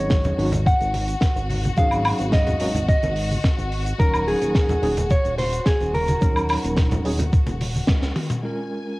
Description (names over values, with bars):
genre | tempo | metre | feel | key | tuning
nu-disco, nu disco | 108 BPM | 4/4 | straight | unclear | A4 = 438 Hz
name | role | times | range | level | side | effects
mellow electric guitar | melody | 0.0-8.1 s | Ab4 to Gb5 | -25 LUFS | equal | tape echo
bright tine electric piano | accompaniment | 0.0-9.0 s | Gb3 to Bb4 | -28 LUFS | right 1 dB | fast tremolo, cassette tape
clear symphonic string section | sustained chords | 0.0-9.0 s | Gb4 to Ab5 | -34 LUFS | left 3 dB | sidechain pumping, cassette tape
chorused synth bass | bass | 0.0-8.1 s | Eb1 to Db2 | -25 LUFS | equal | sidechain pumping
electronic kick drum | drums | 0.1-8.0 s | none | -19 LUFS | equal | studio reverb, cassette tape
tight funk drum kit | drums | 0.1-9.0 s | hi-hat, shaker, snare drum, toms, woodblock | -28 LUFS | equal | low-pass filter on hats, studio reverb, cassette tape, low-pass filter on toms, low-pass filter on snare, low-pass filter on perc, low-pass filter on room
congas | percussion | 0.2-7.9 s | none | -27 LUFS | equal | none
room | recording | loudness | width
light reverb, small room reverb | home recording on cassette | -18 LUFS | side -22 dB against mid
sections
0.0-8.4 A section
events
drum fill 7.9-8.4; band accent 7.9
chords
0.0 Ab7sus4; 4.0 Ebm7; 8.4 Bbm7